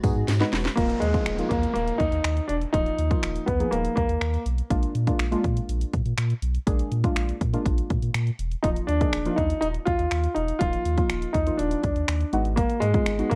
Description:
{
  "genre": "dance-pop",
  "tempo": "122 BPM",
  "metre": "4/4",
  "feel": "straight",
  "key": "Eb harmonic minor",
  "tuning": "A4 = 441 Hz",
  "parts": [
    { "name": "deep mellow chord stab", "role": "accompaniment", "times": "0.0-13.4 s", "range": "F3 to Cb5", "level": "-32 LUFS", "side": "equal", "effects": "chorus, sidechain pumping" },
    { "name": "granular cloud pad", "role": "sustained chords", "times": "0.0-0.7 s", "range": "none", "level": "barely audible", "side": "none", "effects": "none" },
    { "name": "warm sub bass", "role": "bass", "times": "0.0-13.4 s", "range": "Eb1 to Bb2", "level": "-29 LUFS", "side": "equal", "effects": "sidechain pumping" },
    { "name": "house drum kit", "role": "drums", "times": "0.0-13.4 s", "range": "finger snaps, hi-hat, kick drum, snare drum", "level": "-29 LUFS", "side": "equal", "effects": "overdrive" },
    { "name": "tambourine", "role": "percussion", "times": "0.0-0.6 s", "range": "none", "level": "-48 LUFS", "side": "equal", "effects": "none" },
    { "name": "warm grand piano", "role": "melody", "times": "0.8-4.4, 8.6-13.4 s", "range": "Ab3 to F4", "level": "-28 LUFS", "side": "equal", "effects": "delay" },
    { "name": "downlifter", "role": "sound effects", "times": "0.8-4.7 s", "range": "none", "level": "-42 LUFS", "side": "equal", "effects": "none" }
  ],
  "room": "little or no reverb",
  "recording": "worn, warbling old tape, cassette tape, warbly pitch drift",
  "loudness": "-25 LUFS",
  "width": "mono",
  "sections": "0.8-13.4 A section",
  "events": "drum fill 0.3-0.8",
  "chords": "0.0 Abm7; 0.8 Ebsus2; 4.7 Bb7; 8.6 Ebsus2; 12.3 Abm7",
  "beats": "0.28 | 0.77 1.26 1.75 2.25 | 2.74 3.23 3.72 4.21 | 4.71 5.20 5.69 6.18 | 6.67 7.16 7.66 8.15 | 8.64 9.13 9.62 10.12 | 10.61 11.10 11.59 12.08 | 12.57 13.06"
}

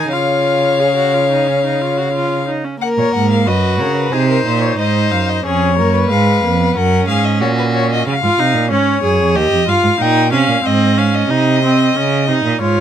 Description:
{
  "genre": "classical, baroque-style fugue for string quartet",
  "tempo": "92 BPM",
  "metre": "4/4",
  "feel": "straight",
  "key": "F# major",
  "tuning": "A4 = 440 Hz",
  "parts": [
    { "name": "rich violin", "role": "melody", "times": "0.0-12.8 s", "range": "G#4 to G#5", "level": "-18 LUFS", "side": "left 6 dB", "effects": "none" },
    { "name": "dark violin", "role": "second line", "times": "0.0-8.1 s", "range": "F#4 to C#5", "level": "-18 LUFS", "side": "left 4 dB", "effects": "none" },
    { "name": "rich viola", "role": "accompaniment", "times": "0.0-12.8 s", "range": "G#3 to G#4", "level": "-18 LUFS", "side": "right 2 dB", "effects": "none" },
    { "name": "warm cello", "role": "bass", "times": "0.0-12.8 s", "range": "D#2 to D#3", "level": "-16 LUFS", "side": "right 4 dB", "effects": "none" }
  ],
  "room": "little or no reverb",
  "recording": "close, detailed microphones",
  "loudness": "-12 LUFS",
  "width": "side -9 dB against mid",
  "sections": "0.0-2.8 A section; 2.8-12.8 B section",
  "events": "none",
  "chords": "0.1 C#; 2.8 F#; 4.1 G#7; 5.5 C#/E#; 6.8 F#; 8.1 C#; 9.4 D#7; 10.7 G#; 12.0 C#",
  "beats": "| 0.12 0.79 1.47 2.14 | 2.82 3.48 4.13 4.79 | 5.45 6.11 6.76 7.41 | 8.06 8.71 9.35 10.00 | 10.65 11.30 11.96 12.62"
}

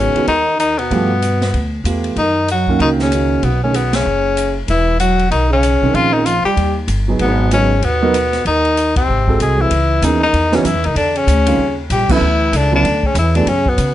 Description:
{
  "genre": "jazz, small-group swing and bop",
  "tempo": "191 BPM",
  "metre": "4/4",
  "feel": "swing 61% on 8ths",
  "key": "G# minor, C# minor from 9.7 s",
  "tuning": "A4 = 440 Hz",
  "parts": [
    { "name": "breathy tenor saxophone", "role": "melody", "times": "0.0-13.9 s", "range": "B3 to G#4", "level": "-16 LUFS", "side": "left 3 dB", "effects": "plate reverb" },
    { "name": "breathy trombone", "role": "second line", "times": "0.0-13.9 s", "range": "B2 to G#3", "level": "-22 LUFS", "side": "right 4 dB", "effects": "none" },
    { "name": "dark grand piano", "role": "accompaniment", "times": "0.0-3.7, 5.8-13.5 s", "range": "D3 to A#4", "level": "-18 LUFS", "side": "right 4 dB", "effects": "none" },
    { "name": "upright bass", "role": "bass", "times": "0.0-13.9 s", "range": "E1 to C#3", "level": "-18 LUFS", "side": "equal", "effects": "none" },
    { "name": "open jazz drum kit", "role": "drums", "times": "0.2-13.9 s", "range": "crash cymbal, hi-hat, kick drum, ride cymbal, snare drum", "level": "-24 LUFS", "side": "equal", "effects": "none" }
  ],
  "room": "moderate studio ambience, RT60 0.5 s",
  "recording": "nothing above 10.7 kHz",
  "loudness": "-13 LUFS",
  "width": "side -13 dB against mid",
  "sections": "0.0-9.7 A section; 9.7-13.9 B section",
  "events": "band accent 3.9, 8.9, 12.1",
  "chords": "0.0 G#m7; 0.9 G9; 2.2 F#6; 3.4 Bsus2; 4.7 Esus2; 5.9 A#m11; 6.6 D#; 7.2 G#m7; 8.5 Cm/Eb; 9.1 G#7b9; 9.7 C#m9; 11.0 Em7; 11.6 D#5; 12.2 Dmaj13",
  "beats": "0.28 0.59 | 0.91 1.23 1.54 1.85 | 2.17 2.48 2.80 3.12 | 3.43 3.75 4.06 4.38 | 4.69 5.00 5.32 5.63 | 5.95 6.26 6.58 6.89 | 7.20 7.52 7.83 8.14 | 8.46 8.77 9.08 9.40 | 9.71 10.02 10.34 10.65 | 10.96 11.28 11.59 11.90 | 12.21 12.53 12.84 13.15 | 13.47 13.78"
}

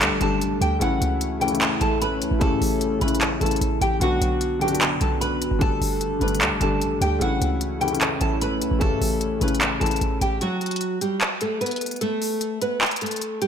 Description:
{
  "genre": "hip hop, trap",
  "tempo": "150 BPM",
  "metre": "4/4",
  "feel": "half-time",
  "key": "B minor",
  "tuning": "A4 = 439 Hz",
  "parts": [
    { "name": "felt-muted upright piano", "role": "accompaniment", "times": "0.0-10.4 s", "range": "C#3 to G4", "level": "-26 LUFS", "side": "left 4 dB", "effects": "none" },
    { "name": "dark analog pad", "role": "sustained chords", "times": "0.0-10.4 s", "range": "G3 to A4", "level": "-29 LUFS", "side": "equal", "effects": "chorus" },
    { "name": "short 808-style bass", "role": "bass", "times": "0.0-10.4 s", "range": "F#1 to A2", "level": "-26 LUFS", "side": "right 1 dB", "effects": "none" },
    { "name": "trap drum kit", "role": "drums", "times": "0.0-13.5 s", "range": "handclaps, hi-hat, kick drum", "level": "-25 LUFS", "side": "equal", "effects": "none" },
    { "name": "downlifter", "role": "sound effects", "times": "0.0-0.8 s", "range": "none", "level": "barely audible", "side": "none", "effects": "none" },
    { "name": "nylon-string guitar", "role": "melody", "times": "0.2-13.5 s", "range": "F#3 to B5", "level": "-26 LUFS", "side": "equal", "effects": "wide subtle chorus, analog delay" }
  ],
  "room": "moderate plate reverb, RT60 1.7 s",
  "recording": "dreamy mix soaked in reverb",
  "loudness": "-20 LUFS",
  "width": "side -8 dB against mid",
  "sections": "0.0-10.4 A section; 10.4-13.5 B section",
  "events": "break 10.4-13.5",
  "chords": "0.0 Gsus2; 0.8 A; 4.0 Bm; 5.6 Gsus2; 7.2 A; 10.4 B5; 12.0 N.C.",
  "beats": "0.01 0.41 | 0.81 1.21 1.61 2.01 | 2.41 2.81 3.21 3.61 | 4.01 4.41 4.81 5.21 | 5.61 6.01 6.41 6.81 | 7.21 7.61 8.01 8.41 | 8.81 9.21 9.61 10.01 | 10.41 10.81 11.21 11.61 | 12.01 12.41 12.81 13.21"
}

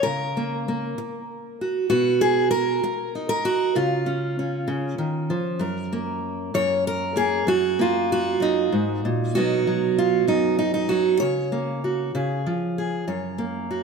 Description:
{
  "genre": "folk, solo fingerstyle acoustic guitar",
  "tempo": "64 BPM (dotted quarters)",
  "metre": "6/8",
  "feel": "straight",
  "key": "F# major",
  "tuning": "A4 = 440 Hz",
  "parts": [
    { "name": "fingerpicked steel-string acoustic guitar", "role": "solo", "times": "0.0-13.8 s", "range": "F#2 to C#5", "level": "-21 LUFS", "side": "right 2 dB", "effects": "none" }
  ],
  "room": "moderate concert hall reverb, RT60 2.3 s",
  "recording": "none",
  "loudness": "-21 LUFS",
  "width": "side -5 dB against mid",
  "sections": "0.0-5.6 A section; 5.6-13.8 B section",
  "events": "none",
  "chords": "0.1 F#/C#; 1.9 B; 3.8 C#; 5.6 F#; 7.5 D#m/F#; 9.3 B; 11.2 F#/C#; 12.1 C#; 13.1 F#",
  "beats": "| 0.05 0.98 | 1.91 2.84 | 3.77 4.70 | 5.62 6.55 | 7.48 8.41 | 9.34 10.27 | 11.20 12.13 | 13.06"
}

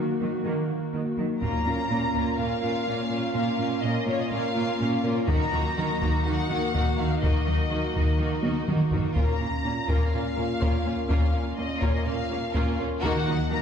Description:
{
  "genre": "cinematic, hybrid orchestral and electronic film score",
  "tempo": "124 BPM",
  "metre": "4/4",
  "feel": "straight",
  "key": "Bb minor",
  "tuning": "A4 = 438 Hz",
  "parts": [
    { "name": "warm symphonic viola section", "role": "accompaniment", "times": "0.0-13.6 s", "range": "Eb3 to Gb4", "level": "-34 LUFS", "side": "right 2 dB", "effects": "none" },
    { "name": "hollow soft pad", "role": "sustained chords", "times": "0.0-13.6 s", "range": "Bb3 to Bb4", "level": "-32 LUFS", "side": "left 1 dB", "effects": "chorus" },
    { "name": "harp-like synth pluck", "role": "arpeggios", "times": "0.0-13.6 s", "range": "Eb3 to Bb4", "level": "-33 LUFS", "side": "right 4 dB", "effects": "chorus, ping-pong delay" },
    { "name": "rich symphonic cello section", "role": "bass", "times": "0.0-13.6 s", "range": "Bb2 to Eb3", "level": "-31 LUFS", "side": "right 2 dB", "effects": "none" },
    { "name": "rich symphonic violin section", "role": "melody", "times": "1.4-13.6 s", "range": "Db5 to Bb5", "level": "-31 LUFS", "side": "left 3 dB", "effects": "none" },
    { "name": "warm symphonic violin section", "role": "second line", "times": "1.4-13.6 s", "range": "Bb3 to Bb4", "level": "-35 LUFS", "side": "left 3 dB", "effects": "none" },
    { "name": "taiko ensemble", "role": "drums", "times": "1.4-2.4, 5.3-13.5 s", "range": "none", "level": "-26 LUFS", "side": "left 1 dB", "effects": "none" }
  ],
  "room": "wet scoring stage reverb, RT60 1.7 s",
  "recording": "heard from further back in the room",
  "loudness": "-23 LUFS",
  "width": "side -7 dB against mid",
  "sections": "0.0-1.4 A section; 1.4-13.6 B section",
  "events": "build-up 0.0-1.4; drum fill 8.4-9.2",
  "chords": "0.0 Ebm; 1.4 Bbm; 5.3 Ebm; 9.2 Bbm; 13.0 Ebm",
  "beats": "0.45 0.94 | 1.42 1.90 2.39 2.87 | 3.35 3.84 4.32 4.81 | 5.29 5.77 6.26 6.74 | 7.22 7.71 8.19 8.68 | 9.16 9.64 10.13 10.61 | 11.10 11.58 12.06 12.55 | 13.03 13.52"
}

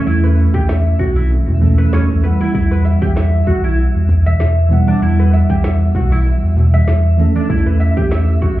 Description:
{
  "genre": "organic downtempo",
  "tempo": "97 BPM",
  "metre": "4/4",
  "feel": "swing 54% on 16ths",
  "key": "E dorian",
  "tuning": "A4 = 440 Hz",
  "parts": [
    { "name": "bell-like tine electric piano", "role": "accompaniment", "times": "0.0-8.6 s", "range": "E3 to F#5", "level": "-19 LUFS", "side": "right 3 dB", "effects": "medium stereo tremolo, sidechain pumping, ping-pong delay" },
    { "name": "oud", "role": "arpeggios", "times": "0.0-8.6 s", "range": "C#4 to E5", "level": "-22 LUFS", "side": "equal", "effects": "low-pass filter, ping-pong delay" },
    { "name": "twinkling granular texture", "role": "texture", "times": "0.0-8.6 s", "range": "E5", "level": "-34 LUFS", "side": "equal", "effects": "built-in reverb" },
    { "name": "warm sub bass", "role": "bass", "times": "0.1-8.6 s", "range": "B1 to E2", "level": "-13 LUFS", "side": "equal", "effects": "none" },
    { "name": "electronic cabasa and snare drum", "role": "drums", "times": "0.1-8.6 s", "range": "none", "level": "-28 LUFS", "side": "equal", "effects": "none" },
    { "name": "congas", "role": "percussion", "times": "0.2-8.6 s", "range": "none", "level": "-24 LUFS", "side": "right 1 dB", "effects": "none" },
    { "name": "electronic kick drum", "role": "drums", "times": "0.5-8.6 s", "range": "none", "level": "-17 LUFS", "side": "equal", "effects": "none" }
  ],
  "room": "light reverb",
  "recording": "heard muffled through a wall, club reverb, EQ",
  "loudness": "-11 LUFS",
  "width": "side -15 dB against mid",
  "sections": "0.0-8.6 A section",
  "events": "none",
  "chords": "0.0 A; 2.5 Emadd9; 7.5 A",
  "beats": "| 0.07 0.69 1.31 1.93 | 2.54 3.16 3.78 4.40 | 5.02 5.64 6.26 6.87 | 7.49 8.11"
}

